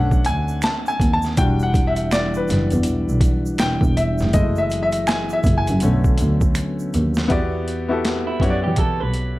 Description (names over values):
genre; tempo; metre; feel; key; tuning
R&B, neo-soul; 81 BPM; 4/4; swing 61% on 16ths; E dorian; A4 = 440 Hz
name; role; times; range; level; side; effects
clear grand piano; accompaniment; 0.0-9.4 s; D3 to A5; -23 LUFS; left 2 dB; none
muted double bass; bass; 0.0-9.4 s; E1 to E3; -21 LUFS; equal; none
boom bap sampler-style drum kit; drums; 0.1-9.4 s; hi-hat, kick drum, snare drum; -21 LUFS; equal; overdrive
egg shaker and finger snaps; percussion; 0.1-7.3 s; none; -35 LUFS; right 5 dB; none
percussive tonewheel organ; sustained chords; 1.4-7.3 s; D3 to G#4; -25 LUFS; equal; chorus vibrato, slow rotary speaker
electric guitar through a small old amp; second line; 8.3-9.4 s; E4 to B4; -26 LUFS; right 5 dB; plate reverb
room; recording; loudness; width
light reverb; dark, warm production; -17 LUFS; side -17 dB against mid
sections
0.0-7.3 A section; 7.3-9.4 B section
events
grand piano solo 0.0-7.3; drum fill 6.6-7.3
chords
0.0 Bm9; 1.4 Em9; 4.3 F#m9; 5.8 Bm9; 7.3 Em9